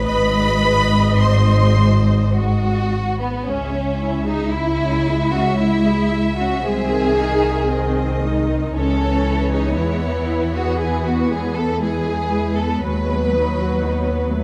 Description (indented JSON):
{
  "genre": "classical, slow romantic movement for string orchestra",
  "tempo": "50-61 BPM",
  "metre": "3/4",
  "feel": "rubato",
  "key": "C# minor",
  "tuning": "A4 = 440 Hz",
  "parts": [
    { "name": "rich symphonic violin section", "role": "melody", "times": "0.0-14.4 s", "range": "B4 to B#5", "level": "-29 LUFS", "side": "equal", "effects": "none" },
    { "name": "warm symphonic violin section", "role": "second line", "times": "0.0-14.3 s", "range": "B3 to B#4", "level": "-25 LUFS", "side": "equal", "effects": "none" },
    { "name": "rich studio viola section", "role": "accompaniment", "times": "0.0-14.4 s", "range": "D#3 to D#5", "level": "-28 LUFS", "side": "equal", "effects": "none" },
    { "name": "rich symphonic double bass section", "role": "bass", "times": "0.0-14.4 s", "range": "G#1 to E2", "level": "-23 LUFS", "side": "equal", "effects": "none" },
    { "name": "warm symphonic cello section", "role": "bass", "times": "0.0-14.4 s", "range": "G#2 to D#4", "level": "-24 LUFS", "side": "equal", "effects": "none" }
  ],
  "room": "moderate scoring stage reverb, RT60 2.0 s",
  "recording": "close, detailed microphones",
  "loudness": "-18 LUFS",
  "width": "mono",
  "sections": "0.0-3.5 A section; 3.5-14.4 B section",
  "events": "none",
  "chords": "0.0 G#; 3.5 C#m; 6.6 G#/B#; 8.7 C#m; 9.8 E; 12.8 B/D#"
}